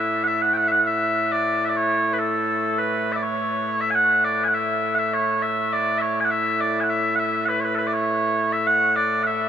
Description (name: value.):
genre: scottish traditional, Scottish pipe music.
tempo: 102 BPM.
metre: 4/4.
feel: straight.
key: A major.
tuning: A4 = 440 Hz.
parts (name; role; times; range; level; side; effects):
mellow small bagpipes; solo; 0.0-9.5 s; A2 to G#5; -19 LUFS; equal; none.
room: wet huge ambient reverb, RT60 7.0 s.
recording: heard from further back in the room.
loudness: -19 LUFS.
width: side -9 dB against mid.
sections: 0.0-9.5 A section.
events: none.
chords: none.